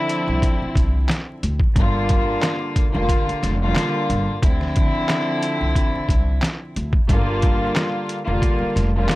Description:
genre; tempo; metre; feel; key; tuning
hip hop, boom-bap hip-hop; 90 BPM; 4/4; swing 54% on 16ths; D minor; A4 = 440 Hz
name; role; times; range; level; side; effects
warm chamber string section; accompaniment; 0.0-9.2 s; D3 to F4; -22 LUFS; equal; high-pass filter, low-pass filter
trip hop sampler-style drum kit; drums; 0.1-9.2 s; handclaps, hi-hat, kick drum, snare drum; -20 LUFS; equal; none
upright bass; bass; 0.3-9.1 s; F1 to D2; -22 LUFS; equal; transformer saturation
room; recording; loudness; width
little or no reverb; dry, gritty hardware recording, vinyl crackle; -18 LUFS; side -18 dB against mid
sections
0.0-9.2 A section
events
none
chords
0.0 Dm9; 1.8 Gm7; 4.4 Dm9; 7.1 Gm7

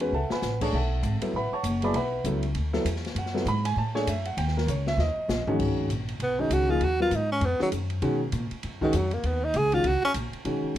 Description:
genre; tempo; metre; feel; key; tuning
modal jazz; 197 BPM; 4/4; swing 61% on 8ths; F# minor, G# dorian from 5.6 s; A4 = 444 Hz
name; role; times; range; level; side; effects
warm concert grand piano; accompaniment; 0.0-10.8 s; D#3 to D6; -28 LUFS; equal; none
upright bass; bass; 0.0-10.8 s; F#1 to B2; -28 LUFS; equal; none
open jazz drum kit; drums; 0.0-10.8 s; crash cymbal, hi-hat, kick drum, ride cymbal, snare drum, toms; -35 LUFS; left 2 dB; none
breathy tenor saxophone; melody; 6.2-10.1 s; D#3 to G#4; -25 LUFS; equal; none
room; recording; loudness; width
light reverb; none; -24 LUFS; side -12 dB against mid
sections
0.0-5.6 A section; 5.6-10.8 A section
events
drum fill 0.1-0.4, 5.0-5.6; tenor saxophone solo 5.6-10.8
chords
0.0 F#m11; 4.4 D#5; 5.6 G#m11

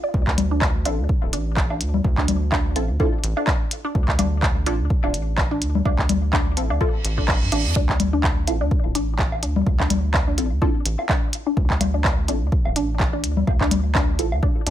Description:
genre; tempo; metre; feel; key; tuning
minimal techno; 126 BPM; 4/4; swing 56% on 16ths; D minor; A4 = 439 Hz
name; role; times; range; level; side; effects
resonant blip pluck; riff; 0.0-14.7 s; D4 to D5; -28 LUFS; left 1 dB; phaser, sidechain pumping, ping-pong delay
rubbery square bass; bass; 0.1-14.7 s; D1 to G2; -23 LUFS; equal; sidechain pumping
electronic kick drum; drums; 0.1-14.5 s; none; -22 LUFS; equal; none
minimal click drum kit; drums; 0.3-14.7 s; handclaps, hi-hat; -24 LUFS; right 1 dB; none
congas and woodblock; percussion; 0.4-14.4 s; none; -26 LUFS; left 5 dB; overdrive, ping-pong delay
filtered dub chord stab; stabs; 0.9-14.3 s; C4 to A4; -28 LUFS; left 1 dB; phaser, analog chorus, ping-pong delay
reverse cymbal; sound effects; 7.0-7.8 s; none; -28 LUFS; right 6 dB; none
room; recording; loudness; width
light reverb; none; -18 LUFS; side -12 dB against mid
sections
0.0-14.7 A section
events
reverse cymbal 7.0-7.8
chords
0.0 D5

